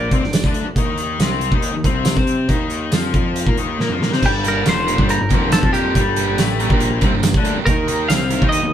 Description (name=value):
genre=indie rock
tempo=139 BPM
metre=4/4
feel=straight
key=G minor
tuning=A4 = 439 Hz
part: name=twelve-string electric guitar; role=melody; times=0.0-0.5, 4.3-8.7 s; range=G4 to F5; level=-21 LUFS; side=right 1 dB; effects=none
part: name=biting overdriven guitar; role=riff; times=0.0-8.7 s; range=F2 to C5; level=-22 LUFS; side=left 6 dB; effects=spring reverb
part: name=fuzz picked electric bass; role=bass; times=0.0-8.7 s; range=F1 to C3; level=-22 LUFS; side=equal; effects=overdrive
part: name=loose indie drum kit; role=drums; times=0.1-8.6 s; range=crash cymbal, hi-hat, kick drum, snare drum, tambourine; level=-18 LUFS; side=right 1 dB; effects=none
part: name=crunchy overdriven guitar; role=riff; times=4.4-8.6 s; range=Eb3 to Bb4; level=-24 LUFS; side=right 7 dB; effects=none
room=moderate studio ambience, RT60 0.5 s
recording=band playing live in one room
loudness=-15 LUFS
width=side -10 dB against mid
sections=0.0-4.2 A section; 4.2-8.7 B section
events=drum fill 3.8-4.2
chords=0.0 Gm; 0.8 Eb5; 4.2 Gm; 7.7 Eb5